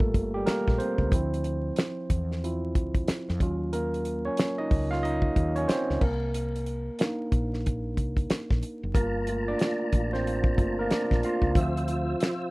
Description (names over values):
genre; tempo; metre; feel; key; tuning
R&B, neo-soul; 92 BPM; 4/4; swing 62% on 16ths; G minor; A4 = 442 Hz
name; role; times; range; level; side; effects
overdriven tine electric piano; accompaniment; 0.0-12.5 s; F3 to F5; -29 LUFS; right 1 dB; none
woody fretless electric bass; bass; 0.0-12.1 s; F#1 to F2; -31 LUFS; equal; none
damped 70s drum kit; drums; 0.0-12.4 s; crash cymbal, finger snaps, hi-hat, kick drum, snare drum; -26 LUFS; equal; none
tonewheel organ; sustained chords; 8.9-12.5 s; F4 to E6; -33 LUFS; left 1 dB; slow rotary speaker, chorus vibrato
room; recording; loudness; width
little or no reverb; rough home demo mix, vinyl crackle; -25 LUFS; side -23 dB against mid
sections
0.0-12.5 A section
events
tine electric piano solo 0.0-12.5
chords
0.0 Gm9; 1.1 Dm9; 3.4 Ebm9; 6.0 Cm9; 8.9 Gm9; 11.6 Dm9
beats
0.47 | 1.12 1.77 2.43 3.08 | 3.73 4.38 5.03 5.69 | 6.34 6.99 7.64 8.29 | 8.95 9.60 10.25 10.90 | 11.56 12.21